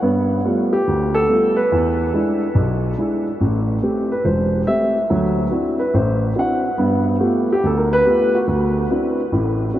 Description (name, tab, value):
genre	jazz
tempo	142 BPM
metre	4/4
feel	swing 65% on 8ths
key	unclear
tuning	A4 = 439 Hz
part	dark grand piano	solo	0.0-9.8 s	E1 to F#5	-16 LUFS	equal	none
room	wet huge ambient reverb, RT60 9.0 s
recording	in a vast, echoing space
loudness	-16 LUFS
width	side -13 dB against mid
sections	0.0-9.8 A section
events	none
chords	0.0 G9; 1.7 E7; 3.4 Am7; 5.1 D9; 6.8 G9; 8.5 D9